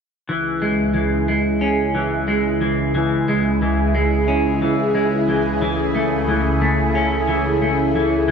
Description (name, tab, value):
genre	dream pop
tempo	90 BPM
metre	4/4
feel	straight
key	C# minor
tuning	A4 = 440 Hz
part	lush unison pad	sustained chords	0.3-8.3 s	C#2 to G#4	-19 LUFS	equal	chorus, phaser
part	semi-hollow electric guitar	arpeggios	0.3-8.3 s	E3 to C#4	-20 LUFS	equal	lush chorus, ping-pong delay
room	moderate plate reverb, RT60 2.6 s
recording	nothing above 10.6 kHz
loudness	-16 LUFS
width	side -6 dB against mid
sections	0.3-8.3 A section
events	none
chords	0.3 C#m; 5.6 Amaj7/C#